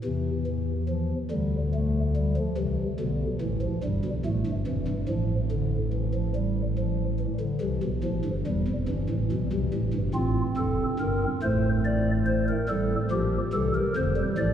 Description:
classical, baroque-style 4-part fugue for pipe organ; 47 BPM (dotted quarters); 12/8; straight; F major; A4 = 439 Hz
pipe organ, stopped flute; solo; 0.0-14.5 s; E1 to D5; -24 LUFS; equal
wet cathedral reverb, RT60 6.8 s; heard from further back in the room; -24 LUFS; side -9 dB against mid
0.0-14.5 A section
0.0 C/E (rootless); 2.6 C; 5.1 F/A; 7.6 C; 10.2 F; 12.7 F/A

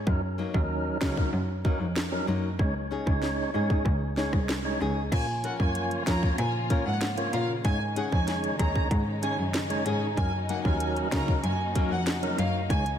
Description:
dancehall; 95 BPM; 4/4; straight; A4 = 440 Hz
tonewheel organ; accompaniment; 0.1-12.9 s; Gb3 to Db5; -32 LUFS; right 2 dB; overdrive, fast rotary speaker
bright cello; bass; 0.1-12.9 s; C2 to Db3; -30 LUFS; equal
island pop drum kit; drums; 0.1-13.0 s; crash cymbal, hi-hat, kick drum, rim click, snare drum; -29 LUFS; equal
nylon-string guitar; arpeggios; 0.4-12.6 s; Gb3 to Bb4; -35 LUFS; left 5 dB
dark studio violin section; melody; 5.1-12.8 s; F5 to Bb5; -33 LUFS; equal; ping-pong delay
warm symphonic string section; sustained chords; 5.1-13.0 s; Db3 to Gb4; -37 LUFS; left 1 dB
moderate lush hall reverb, RT60 1.8 s, small room ambience; dreamy mix soaked in reverb; -25 LUFS; side -9 dB against mid
0.0-5.1 A section; 5.1-13.0 B section
0.1 Gb6; 2.6 Dbsus2; 5.1 Bbm; 7.6 Absus4; 10.2 Gb6

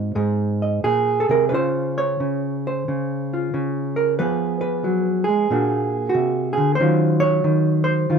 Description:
solo jazz; 92 BPM; 4/4; swing 67% on 8ths, rubato; Db major; A4 = 440 Hz
hollow-body jazz guitar; solo; 0.0-8.2 s; Ab2 to Eb5; -18 LUFS; right 1 dB
light reverb; close, detailed microphones; -18 LUFS; side -6 dB against mid
0.0-1.5 A section; 1.5-8.2 B section
hollow-body jazz guitar solo 0.0-1.5
0.0 Ab7; 1.5 Dbmaj7; 4.2 Fdim; 5.5 Bb7b13; 6.8 Ebm9

